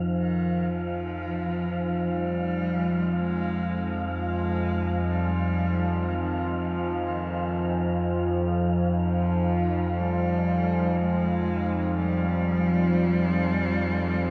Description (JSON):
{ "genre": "dark ambient drone", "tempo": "free time", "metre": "none", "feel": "none", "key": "F minor", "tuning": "A4 = 440 Hz", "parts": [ { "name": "deep dark ambient pad", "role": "sustained chords", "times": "0.0-14.3 s", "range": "F3 to Ab5", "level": "-36 LUFS", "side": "equal", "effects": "chorus, built-in reverb" }, { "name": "analog drone", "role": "drone", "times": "0.0-14.3 s", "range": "F2 to F3", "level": "-27 LUFS", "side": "equal", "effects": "chorus" }, { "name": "wind-like tuned noise texture", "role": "texture", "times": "0.0-14.3 s", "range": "F5", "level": "-39 LUFS", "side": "equal", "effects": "built-in reverb" }, { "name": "rich cello", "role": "melody", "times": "0.2-14.3 s", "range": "Eb3 to Ab3", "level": "-35 LUFS", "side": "equal", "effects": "tape echo" } ], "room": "wet huge ambient reverb, RT60 8.1 s", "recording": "dark, warm production", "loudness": "-26 LUFS", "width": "mono", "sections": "0.0-14.3 A section", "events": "fade-in on cello 0.0-14.3", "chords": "0.0 Fmadd9" }